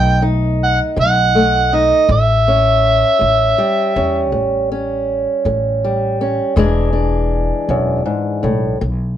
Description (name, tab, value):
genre	acoustic country blues, solo or duo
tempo	54 BPM (dotted quarters)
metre	12/8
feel	straight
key	unclear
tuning	A4 = 440 Hz
part	overdriven harmonica	melody	0.0-4.3 s	D#5 to G5	-14 LUFS	right 1 dB	none
part	fingerpicked old ladder-braced acoustic guitar	accompaniment	0.0-9.2 s	E2 to G#4	-17 LUFS	equal	none
part	upright bass	bass	0.0-9.2 s	E1 to E2	-18 LUFS	equal	none
room	moderate studio reverb, RT60 0.6 s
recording	nothing above 11.0 kHz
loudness	-13 LUFS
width	side -11 dB against mid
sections	0.0-9.2 A section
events	none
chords	0.0 B7; 2.1 A7; 6.6 E7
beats	0.98 | 2.10 3.22 4.34 5.46 | 6.57 7.69 8.81